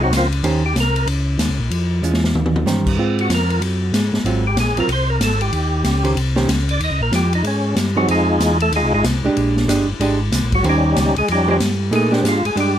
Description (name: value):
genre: soul jazz organ trio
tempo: 188 BPM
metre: 4/4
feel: swing 63% on 8ths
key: Eb mixolydian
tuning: A4 = 440 Hz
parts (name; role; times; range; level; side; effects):
- percussive tonewheel organ; melody; 0.0-1.1, 3.2-12.8 s; F3 to Eb5; -19 LUFS; equal; overdrive, chorus vibrato, stopped rotary speaker
- tonewheel organ; bass; 0.0-12.8 s; G1 to Bb2; -19 LUFS; equal; slow rotary speaker
- open jazz drum kit; drums; 0.1-12.7 s; crash cymbal, hi-hat, kick drum, ride cymbal, snare drum, toms; -22 LUFS; left 1 dB; none
- archtop guitar, miked and amplified; accompaniment; 0.4-12.7 s; Eb3 to C5; -20 LUFS; right 3 dB; none
room: light reverb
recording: close, detailed microphones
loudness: -15 LUFS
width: side -10 dB against mid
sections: 0.0-12.8 A section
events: tonewheel organ solo 0.0-12.8; drum fill 2.0-2.7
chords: 0.4 Eb6; 1.7 Fmmaj7; 2.3 Eb6; 3.0 Ab13; 5.5 Eb13; 8.1 Fm7; 9.4 Bb13; 10.6 Eb13; 11.9 Bb6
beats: 0.12 | 0.44 0.76 1.08 1.39 | 1.71 2.03 2.35 2.67 | 2.98 3.30 3.62 3.94 | 4.25 4.57 4.89 5.21 | 5.53 5.85 6.17 6.49 | 6.80 7.12 7.44 7.76 | 8.08 8.40 8.72 9.04 | 9.36 9.68 10.00 10.32 | 10.64 10.96 11.28 11.60 | 11.92 12.24 12.56